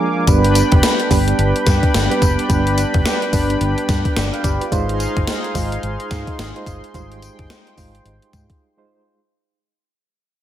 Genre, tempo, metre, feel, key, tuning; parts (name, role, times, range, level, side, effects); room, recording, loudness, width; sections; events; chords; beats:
R&B, new jack swing; 108 BPM; 4/4; swing 60% on 16ths; A4 = 440 Hz
soft electric-piano-like synth keys; accompaniment; 0.0-9.2 s; F3 to G5; -21 LUFS; right 3 dB; chorus, tremolo, slapback echo
brassy analog pad; sustained chords; 0.0-9.1 s; D4 to D6; -22 LUFS; left 1 dB; chorus, tremolo
vintage muted fingered electric bass; bass; 0.3-8.5 s; F1 to Ab2; -20 LUFS; equal
gated 80s digital drum machine; drums; 0.3-8.6 s; hi-hat, kick drum, snare drum, tambourine; -18 LUFS; left 1 dB; gated reverb, gated reverb snare
moderate lush hall reverb, RT60 1.6 s; big arena sound; -15 LUFS; side -11 dB against mid
0.3-9.2 A section
break 0.0, 8.6-9.2; fade-out 0.3-9.2
0.3 G; 4.7 Fm7
| 0.27 0.83 1.38 1.94 | 2.50 3.05 3.61 4.16 | 4.72 5.27 5.83 6.38 | 6.94 7.50 8.05 8.61